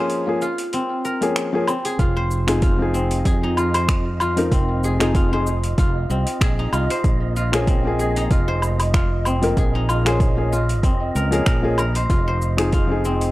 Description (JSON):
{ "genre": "organic downtempo", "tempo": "95 BPM", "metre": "4/4", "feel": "swing 55% on 16ths", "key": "F minor", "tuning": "A4 = 440 Hz", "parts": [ { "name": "felt-muted upright piano", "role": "accompaniment", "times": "0.0-13.3 s", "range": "F3 to Bb4", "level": "-23 LUFS", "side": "left 2 dB", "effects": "sidechain pumping, tape echo" }, { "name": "guzheng", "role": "arpeggios", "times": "0.0-13.3 s", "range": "C4 to C5", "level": "-25 LUFS", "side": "equal", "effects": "tape echo" }, { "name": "deep house drum kit", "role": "drums", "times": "0.1-13.3 s", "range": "cabasa, finger snaps, hi-hat, woodblock", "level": "-27 LUFS", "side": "equal", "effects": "overdrive" }, { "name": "fretless electric bass", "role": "bass", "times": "2.0-13.3 s", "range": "F1 to F2", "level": "-22 LUFS", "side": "equal", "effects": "ensemble chorus" }, { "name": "electronic kick drum", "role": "drums", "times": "2.0-12.9 s", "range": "none", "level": "-19 LUFS", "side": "equal", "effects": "overdrive" }, { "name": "wind-like tuned noise texture", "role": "texture", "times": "3.0-13.3 s", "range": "Eb5", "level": "-32 LUFS", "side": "right 4 dB", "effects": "built-in reverb" } ], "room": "digital ambience", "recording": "dry, gritty hardware recording", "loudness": "-17 LUFS", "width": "side -17 dB against mid", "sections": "0.0-13.3 A section", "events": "break 0.0-2.0", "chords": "0.0 Bbm7; 2.0 Fm7; 7.0 Bbm7; 12.1 Fm7" }